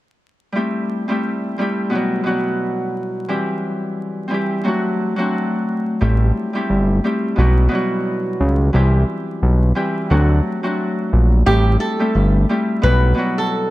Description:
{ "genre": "hip hop, boom-bap hip-hop", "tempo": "88 BPM", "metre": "4/4", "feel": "swing 58% on 16ths", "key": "unclear", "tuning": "A4 = 442 Hz", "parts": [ { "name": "Celtic harp", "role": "accompaniment", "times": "0.5-13.7 s", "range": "B2 to G4", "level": "-19 LUFS", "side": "equal", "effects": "high-pass filter, low-pass filter" }, { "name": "fat analog bass", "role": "bass", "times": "6.0-13.1 s", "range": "G1 to D2", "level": "-13 LUFS", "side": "equal", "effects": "none" }, { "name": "flamenco guitar", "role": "melody", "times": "11.5-13.7 s", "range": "G4 to B4", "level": "-20 LUFS", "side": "right 1 dB", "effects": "high-pass filter, low-pass filter" } ], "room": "light reverb, studio ambience", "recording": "vinyl crackle", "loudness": "-16 LUFS", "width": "side -17 dB against mid", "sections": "0.6-11.5 A section; 11.5-13.7 B section", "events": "none", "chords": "0.6 Am7; 1.9 Emadd9/B; 3.3 C; 4.7 D7; 6.0 Am7; 7.4 Emadd9/B; 8.7 C; 10.1 D7; 11.5 Am7; 12.8 Emadd9/B", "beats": "| 0.56 1.24 1.92 2.60 | 3.29 3.97 4.65 5.33 | 6.01 6.70 7.38 8.06 | 8.74 9.42 10.11 10.79 | 11.47 12.15 12.83 13.51" }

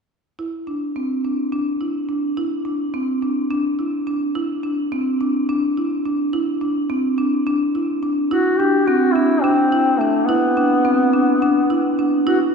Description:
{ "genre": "contemporary instrumental, contemporary", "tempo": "212 BPM (eighths)", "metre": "7/8", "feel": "straight", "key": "unclear", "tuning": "A4 = 440 Hz", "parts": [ { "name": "marimba with medium hard mallets", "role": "arpeggios", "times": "0.4-12.5 s", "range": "C4 to E4", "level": "-18 LUFS", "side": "equal", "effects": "none" }, { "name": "warm duduk", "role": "melody", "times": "8.3-12.4 s", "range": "A3 to G4", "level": "-18 LUFS", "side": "left 2 dB", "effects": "none" } ], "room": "wet cathedral reverb, RT60 6.0 s", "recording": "recorded in a church or concert hall", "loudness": "-17 LUFS", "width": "side -5 dB against mid", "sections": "0.4-8.3 A section; 8.3-12.5 B section", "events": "none", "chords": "0.4 Cadd9", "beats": "| 0.38 0.67 0.95 1.24 1.52 1.80 2.09 | 2.37 2.65 2.94 3.22 3.50 3.79 4.07 | 4.35 4.64 4.92 5.20 5.49 5.77 6.05 | 6.33 6.62 6.90 7.18 7.46 7.75 8.03 | 8.31 8.59 8.88 9.16 9.44 9.72 10.01 | 10.29 10.57 10.85 11.14 11.42 11.70 11.98 | 12.27" }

